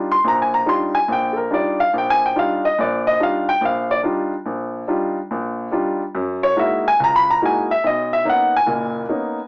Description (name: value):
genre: jazz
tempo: 142 BPM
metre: 4/4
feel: swing 66% on 8ths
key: Eb major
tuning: A4 = 439 Hz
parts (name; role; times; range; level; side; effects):
- warm baby grand piano; solo; 0.0-9.5 s; F#1 to C6; -16 LUFS; equal; cassette tape
room: moderate studio reverb, RT60 0.6 s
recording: home recording on cassette, small speaker sound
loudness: -16 LUFS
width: side -32 dB against mid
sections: 0.0-7.8 A section; 7.8-9.5 A section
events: none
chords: 0.0 Ebmaj9; 6.1 Gb13; 7.8 Bmaj9